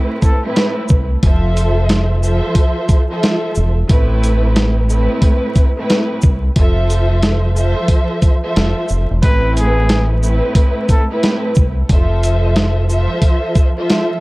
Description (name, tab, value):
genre	hip hop, boom-bap hip-hop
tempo	90 BPM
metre	4/4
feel	swing 62% on 16ths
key	A minor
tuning	A4 = 441 Hz
part	warm studio string section	accompaniment	0.0-14.2 s	A2 to E5	-18 LUFS	equal	cassette tape, high-pass filter, low-pass filter
part	trumpet with straight mute	melody	0.2-0.4, 9.2-11.1 s	G#4 to B4	-24 LUFS	equal	high-pass filter, low-pass filter, tape echo
part	dusty soul sampler-style drum kit	drums	0.2-14.1 s	hi-hat, kick drum, shaker, snare drum	-14 LUFS	equal	none
part	deep dub fingered electric bass	bass	0.9-13.1 s	E1 to C2	-15 LUFS	equal	none
room	little or no reverb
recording	dark, warm production, vinyl crackle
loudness	-12 LUFS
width	side -21 dB against mid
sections	0.0-14.2 A section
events	none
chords	0.0 Amadd9; 1.2 Fmaj7; 3.9 Amadd9; 6.6 Fmaj7; 9.2 Amadd9; 11.9 Fmaj7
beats	0.56 | 1.23 1.90 2.56 3.23 | 3.90 4.56 5.23 5.89 | 6.56 7.23 7.89 8.56 | 9.23 9.89 10.56 11.23 | 11.89 12.56 13.23 13.89